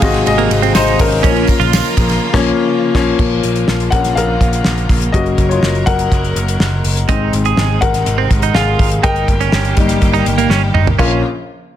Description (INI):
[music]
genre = piano-driven pop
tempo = 123 BPM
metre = 4/4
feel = straight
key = Bb minor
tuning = A4 = 442 Hz
[part]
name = clear grand piano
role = accompaniment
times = 0.0-11.2 s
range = Bb1 to Ab5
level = -16 LUFS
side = left 5 dB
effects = none
[part]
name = bright studio string section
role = sustained chords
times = 0.0-11.2 s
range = C3 to Bb4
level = -23 LUFS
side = right 3 dB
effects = none
[part]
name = picked electric bass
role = bass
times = 0.0-11.2 s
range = Gb1 to Bb1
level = -17 LUFS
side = equal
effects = none
[part]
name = damped 70s drum kit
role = drums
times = 0.0-11.1 s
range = crash cymbal, hi-hat, kick drum, ride cymbal, snare drum, toms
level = -16 LUFS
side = equal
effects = none
[part]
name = tambourine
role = percussion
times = 0.0-2.2 s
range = none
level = -29 LUFS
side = right 16 dB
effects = none
[part]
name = twelve-string electric guitar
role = riff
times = 0.4-1.9, 7.1-11.2 s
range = Bb3 to Ab4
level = -18 LUFS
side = right 13 dB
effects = none
[sound]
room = light reverb, small room ambience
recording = dense, heavily limited modern master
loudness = -11 LUFS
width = side -11 dB against mid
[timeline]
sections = 0.0-3.2 A section; 3.2-11.0 B section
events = grand piano solo 0.0-3.2, 3.2-11.0; band accent 2.2-3.2; drum fill 10.5-11.0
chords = 0.0 Ab; 1.2 Bbm; 5.1 Gb; 7.1 Ab; 9.0 Eb/G; 11.0 Bbm